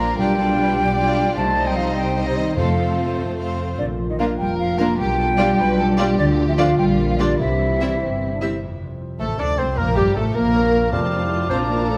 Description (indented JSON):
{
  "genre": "classical",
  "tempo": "101 BPM (dotted quarters)",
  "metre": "6/8",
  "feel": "straight",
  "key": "F major from 6.2 s",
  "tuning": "A4 = 440 Hz",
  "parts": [
    { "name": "warm symphonic violin section", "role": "melody", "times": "0.0-12.0 s", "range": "E4 to Bb5", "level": "-34 LUFS", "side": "equal", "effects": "none" },
    { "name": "mellow silver concert flute", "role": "second line", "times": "0.0-12.0 s", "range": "G4 to D6", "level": "-26 LUFS", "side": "equal", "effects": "none" },
    { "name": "rich chamber violin section", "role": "second line", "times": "0.0-12.0 s", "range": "Eb4 to E5", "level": "-31 LUFS", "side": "equal", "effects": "none" },
    { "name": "warm symphonic viola section", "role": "accompaniment", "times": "0.0-12.0 s", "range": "G3 to F4", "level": "-29 LUFS", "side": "equal", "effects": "none" },
    { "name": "mellow French horn section", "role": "sustained chords", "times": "0.0-12.0 s", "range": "F3 to G4", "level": "-29 LUFS", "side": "equal", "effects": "none" },
    { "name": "concert harp", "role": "arpeggios", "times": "0.0-12.0 s", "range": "F2 to D5", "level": "-30 LUFS", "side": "equal", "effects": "none" },
    { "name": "rich studio double bass section", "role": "bass", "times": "0.0-12.0 s", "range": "F1 to F2", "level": "-28 LUFS", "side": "equal", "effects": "none" },
    { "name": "warm chamber cello section", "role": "bass", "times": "0.0-12.0 s", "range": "C3 to D4", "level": "-27 LUFS", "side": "equal", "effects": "none" },
    { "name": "timpani", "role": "percussion", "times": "2.6-3.1, 7.4-11.5 s", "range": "F2 to C3", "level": "-31 LUFS", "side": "equal", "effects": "none" },
    { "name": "mellow clarinet", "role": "second line", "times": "9.2-12.0 s", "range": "G4 to D5", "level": "-29 LUFS", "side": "equal", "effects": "none" },
    { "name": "warm cor anglais", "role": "second line", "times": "9.2-12.0 s", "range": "G4 to A5", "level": "-30 LUFS", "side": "equal", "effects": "none" },
    { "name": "warm bassoon", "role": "accompaniment", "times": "9.2-12.0 s", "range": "F3 to D4", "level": "-30 LUFS", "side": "equal", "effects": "none" }
  ],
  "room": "moderate scoring stage reverb, RT60 2.0 s",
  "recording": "none",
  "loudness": "-20 LUFS",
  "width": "mono",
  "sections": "0.0-8.6 A section; 8.6-12.0 B section",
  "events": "none",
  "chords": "0.2 G7/B; 1.4 Cm; 2.6 F; 3.8 Bb; 5.0 G7/B; 6.2 Dm; 6.8 Gm7/Bb; 7.4 C; 8.6 F; 9.8 Bbm; 10.9 F",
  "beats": "| 0.19 0.78 | 1.38 1.97 | 2.57 3.18 | 3.79 4.39 | 4.99 5.59 | 6.18 6.79 | 7.40 8.01 | 8.62 9.20 | 9.78 10.35 | 10.93 11.50"
}